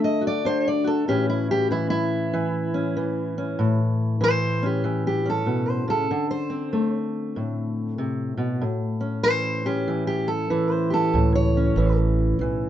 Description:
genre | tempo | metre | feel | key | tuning
acoustic country blues, solo or duo | 96 BPM | 4/4 | swing 63% on 8ths | A mixolydian | A4 = 442 Hz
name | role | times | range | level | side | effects
fingerpicked steel-string acoustic guitar | melody | 0.0-12.7 s | A2 to D#5 | -21 LUFS | equal | none
upright bass | bass | 11.1-12.7 s | A1 to C#2 | -23 LUFS | right 1 dB | none
room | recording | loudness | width
light reverb | band playing live in one room, nothing above 7.7 kHz | -21 LUFS | side -11 dB against mid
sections
0.0-12.7 A section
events
steel-string acoustic guitar solo 0.0-12.7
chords
0.0 D; 1.1 A; 6.1 D5; 8.6 A7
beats
0.46 | 1.09 1.72 2.34 2.97 | 3.60 4.23 4.85 5.48 | 6.11 6.74 7.37 8.00 | 8.62 9.25 9.88 10.51 | 11.14 11.77 12.40

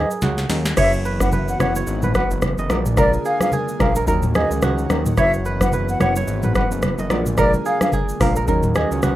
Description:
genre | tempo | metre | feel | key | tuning
afrobeats | 109 BPM | 4/4 | swing 58% on 16ths | F# mixolydian | A4 = 440 Hz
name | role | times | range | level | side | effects
mellow silver concert flute | melody | 0.0-8.9 s | D5 to F#5 | -22 LUFS | left 1 dB | tape echo
glassy wavetable pluck | accompaniment | 0.0-9.2 s | F#3 to B4 | -27 LUFS | left 1 dB | chorus
kora | riff | 0.0-9.2 s | F#4 to D#5 | -24 LUFS | right 4 dB | none
fat analog bass | bass | 0.0-9.2 s | F#1 to D#2 | -23 LUFS | equal | none
booming analog drum machine | drums | 0.1-9.2 s | crash cymbal, hi-hat, kick drum, rim click, shaker, snare drum, toms | -22 LUFS | equal | none
congas | percussion | 0.2-9.2 s | none | -26 LUFS | equal | none
airy breathy pad | sustained chords | 0.8-9.2 s | D3 to G#4 | -29 LUFS | equal | chorus
room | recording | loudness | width
light reverb | rough home demo mix | -16 LUFS | side -14 dB against mid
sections
0.8-9.2 A section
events
drum fill 0.2-0.8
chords
0.0 D#m7; 0.8 F#7sus4; 2.7 A#7; 4.1 D#m7; 5.2 F#7sus4; 7.1 A#7; 8.5 D#m7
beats
0.22 | 0.77 1.32 1.87 2.42 | 2.97 3.52 4.07 4.62 | 5.17 5.72 6.28 6.83 | 7.38 7.93 8.48 9.03

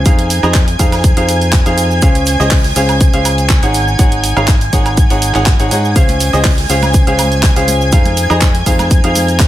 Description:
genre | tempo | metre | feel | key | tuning
piano house | 122 BPM | 4/4 | straight | Db major | A4 = 435 Hz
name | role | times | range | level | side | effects
analog string pad | sustained chords | 0.0-9.5 s | Ab5 to Ab6 | -20 LUFS | equal | ensemble chorus, sidechain pumping
bright upright piano | riff | 0.0-9.5 s | Db4 to Gb5 | -16 LUFS | equal | sidechain pumping, ping-pong delay
fingered electric bass | bass | 0.0-9.5 s | Ab1 to Ab2 | -16 LUFS | equal | sidechain pumping
electronic kick drum | drums | 0.1-9.5 s | none | -11 LUFS | equal | none
house drum kit | drums | 0.1-9.5 s | handclaps, hi-hat, shaker, woodblock | -19 LUFS | right 2 dB | none
jazz brush drum kit | drums | 0.1-9.5 s | hi-hat, shaker, snare drum | -26 LUFS | equal | none
tambourine and congas | percussion | 6.0-9.5 s | none | -27 LUFS | right 1 dB | none
room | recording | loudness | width
studio reverb | none | -9 LUFS | side -13 dB against mid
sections
0.0-9.5 A section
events
none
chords
0.1 Fm7; 2.0 Dbmaj7; 3.7 Ab7sus4; 6.0 Dbmaj7; 7.9 Fm7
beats
| 0.06 0.55 1.04 1.53 | 2.02 2.52 3.01 3.50 | 3.99 4.48 4.97 5.47 | 5.96 6.45 6.94 7.43 | 7.92 8.42 8.91 9.40

